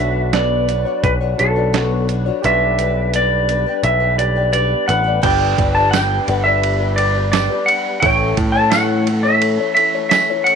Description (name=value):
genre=folk rock and heartland rock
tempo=86 BPM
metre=4/4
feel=straight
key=unclear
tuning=A4 = 439 Hz
part: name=clean lap steel guitar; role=melody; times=0.0-10.6 s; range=A4 to A5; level=-16 LUFS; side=right 1 dB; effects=none
part: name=picked twelve-string acoustic guitar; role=accompaniment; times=0.0-10.6 s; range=A2 to C#5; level=-22 LUFS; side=left 13 dB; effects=none
part: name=warm grand piano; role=accompaniment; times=0.0-10.6 s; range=D4 to C#6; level=-29 LUFS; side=right 12 dB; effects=none
part: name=tonewheel organ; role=sustained chords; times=0.0-10.6 s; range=E3 to B4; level=-30 LUFS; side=equal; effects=overdrive, fast rotary speaker
part: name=picked electric bass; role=bass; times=0.0-9.6 s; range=G1 to A2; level=-19 LUFS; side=right 1 dB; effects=none
part: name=dusty soul sampler-style drum kit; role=drums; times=0.3-10.6 s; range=crash cymbal, hi-hat, kick drum, ride cymbal, snare drum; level=-22 LUFS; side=right 5 dB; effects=none
part: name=tambourine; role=percussion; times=5.9-10.3 s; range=none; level=-32 LUFS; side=right 16 dB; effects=none
room=digital ambience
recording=1960s-style stereo with parts hard left and right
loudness=-14 LUFS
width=side -6 dB against mid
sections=0.0-5.2 A section; 5.2-10.6 B section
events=kick and snare drop out 2.4-5.2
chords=0.0 Bmadd9; 2.4 G/B; 5.2 G; 8.0 A